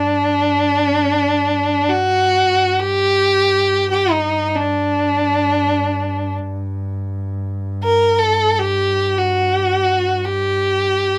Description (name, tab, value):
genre	Arabic maqam ensemble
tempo	free time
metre	none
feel	none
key	unclear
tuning	A4 = 440 Hz
part	rich violin	melody	0.0-11.2 s	D4 to Bb4	-17 LUFS	equal	none
part	rich double bass	drone	0.0-11.2 s	G2	-27 LUFS	equal	none
room	light reverb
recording	close, detailed microphones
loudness	-17 LUFS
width	mono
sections	0.0-11.2 A section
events	none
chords	none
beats	free time